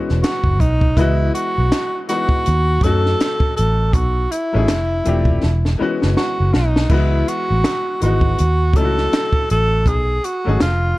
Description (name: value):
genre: R&B, neo-soul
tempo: 81 BPM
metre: 4/4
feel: swing 60% on 16ths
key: C# minor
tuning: A4 = 441 Hz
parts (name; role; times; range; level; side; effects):
- bright upright piano; accompaniment; 0.0-11.0 s; E3 to D#5; -24 LUFS; left 4 dB; none
- vintage muted fingered electric bass; bass; 0.1-10.9 s; E1 to F#2; -17 LUFS; equal; none
- compact cocktail drum kit; drums; 0.1-10.8 s; crash cymbal, handclaps, hi-hat, kick drum, snare drum; -19 LUFS; equal; none
- breathy tenor saxophone; melody; 0.2-11.0 s; D#4 to A4; -20 LUFS; equal; none
room: small room reverb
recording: dark, warm production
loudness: -15 LUFS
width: side -19 dB against mid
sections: 0.0-11.0 A section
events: drum fill 5.4-6.9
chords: 0.0 E6; 1.0 C#m11; 2.5 D#m7b5; 3.9 B13; 4.7 F6; 5.4 E6; 6.9 C#m11; 8.4 D#m7b5; 9.9 B13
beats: 0.23 | 0.97 1.71 2.45 3.19 | 3.93 4.67 5.41 6.16 | 6.89 7.64 8.38 9.12 | 9.86 10.60